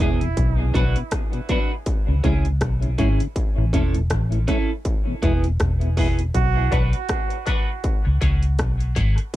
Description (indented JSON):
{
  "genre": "dub reggae",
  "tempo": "80 BPM",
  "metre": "4/4",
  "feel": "swing 57% on 16ths",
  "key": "unclear",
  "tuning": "A4 = 440 Hz",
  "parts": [
    { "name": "bright trombone", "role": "second line", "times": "0.0-0.2, 6.4-6.9 s", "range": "E4 to F#4", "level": "-31 LUFS", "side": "right 11 dB", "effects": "high-pass filter, dub echo" },
    { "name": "electric guitar at the edge of break-up", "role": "accompaniment", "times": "0.0-9.2 s", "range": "B3 to B4", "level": "-28 LUFS", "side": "right 3 dB", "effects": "lush chorus, high-pass filter, dub echo" },
    { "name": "mellow tonewheel organ", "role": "accompaniment", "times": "0.0-9.3 s", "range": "E2 to E4", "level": "-31 LUFS", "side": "left 3 dB", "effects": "overdrive, chorus vibrato, slow rotary speaker, high-pass filter, dub echo" },
    { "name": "vintage muted fingered electric bass", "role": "bass", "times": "0.0-9.2 s", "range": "E1 to C#2", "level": "-20 LUFS", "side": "equal", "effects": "none" },
    { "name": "techno drum kit", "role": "drums", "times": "0.2-9.4 s", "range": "hi-hat, kick drum, rim click", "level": "-23 LUFS", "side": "equal", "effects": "distortion" },
    { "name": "filtered dub chord stab", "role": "stabs", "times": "6.7-9.2 s", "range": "D4 to C#5", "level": "-33 LUFS", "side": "left 7 dB", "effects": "phaser, high-pass filter, dub echo" }
  ],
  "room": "little or no reverb",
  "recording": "dry, close 1970s-style studio recording",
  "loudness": "-19 LUFS",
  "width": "side -15 dB against mid",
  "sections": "0.0-9.4 A section",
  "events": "filter sweep 3.4-9.4",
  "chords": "0.4 Bm; 1.9 C#m; 3.4 A; 4.9 E; 6.3 Bm; 7.8 C#m"
}